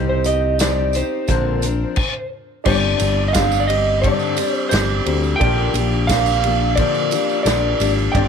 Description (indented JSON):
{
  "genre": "folk rock and heartland rock",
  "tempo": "88 BPM",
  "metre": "4/4",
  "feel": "straight",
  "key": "unclear",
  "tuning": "A4 = 440 Hz",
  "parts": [
    { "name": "electric slide guitar", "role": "melody", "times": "0.0-8.3 s", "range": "C5 to G5", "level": "-21 LUFS", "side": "right 1 dB", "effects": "none" },
    { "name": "picked steel-string acoustic guitar", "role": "accompaniment", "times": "0.0-8.3 s", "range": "G2 to Bb4", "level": "-23 LUFS", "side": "left 11 dB", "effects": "none" },
    { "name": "warm upright piano", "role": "accompaniment", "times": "0.0-8.3 s", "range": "D4 to F5", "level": "-27 LUFS", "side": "right 13 dB", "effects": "none" },
    { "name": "picked electric bass", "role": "bass", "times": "0.0-8.3 s", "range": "G1 to D2", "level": "-20 LUFS", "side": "equal", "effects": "none" },
    { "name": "tambourine", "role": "percussion", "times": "0.2-8.1 s", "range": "none", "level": "-32 LUFS", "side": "right 16 dB", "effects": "none" },
    { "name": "natural country drum kit", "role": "drums", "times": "0.3-8.3 s", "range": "crash cymbal, hi-hat, kick drum, ride cymbal, snare drum", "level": "-22 LUFS", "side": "equal", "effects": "none" }
  ],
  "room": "small room ambience",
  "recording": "1960s-style stereo with parts hard left and right",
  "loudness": "-16 LUFS",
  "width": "side -6 dB against mid",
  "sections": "0.0-2.7 A section; 2.7-8.3 B section",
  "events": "stop 2.0-2.7",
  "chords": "0.0 Cm; 1.3 Bbadd9; 2.7 Gsus4; 5.4 Bb6"
}